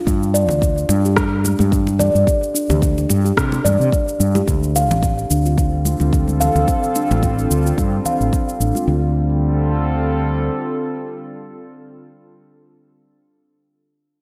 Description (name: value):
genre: organic downtempo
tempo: 109 BPM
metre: 4/4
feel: swing 55% on 16ths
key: D minor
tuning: A4 = 440 Hz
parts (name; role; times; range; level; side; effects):
- steel tongue drum; arpeggios; 0.0-9.1 s; D4 to F5; -23 LUFS; equal; low-pass filter, delay
- fretless electric bass; bass; 0.1-10.5 s; A1 to C3; -20 LUFS; equal; sidechain pumping
- electronic kick drum; drums; 0.1-8.4 s; none; -22 LUFS; equal; studio reverb
- electronic shaker and rim click; drums; 0.1-8.9 s; none; -26 LUFS; equal; studio reverb, gated reverb
- congas; percussion; 0.5-8.8 s; none; -30 LUFS; equal; none
- warbly tape-like pad; sustained chords; 5.4-11.8 s; D3 to A4; -26 LUFS; equal; chorus, built-in reverb, sidechain pumping
room: moderate lush hall reverb, RT60 2.0 s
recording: bright 1980s-style digital production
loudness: -18 LUFS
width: mono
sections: 0.0-4.5 A section; 4.5-8.9 B section; 8.9-11.1 C section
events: filter sweep on steel tongue drum 4.5-8.9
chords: 0.1 G5; 4.5 Dm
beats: | 0.07 0.62 1.17 1.72 | 2.27 2.82 3.37 3.92 | 4.47 5.02 5.57 6.12 | 6.67 7.22 7.77 8.32 | 8.87 9.43 9.97 10.53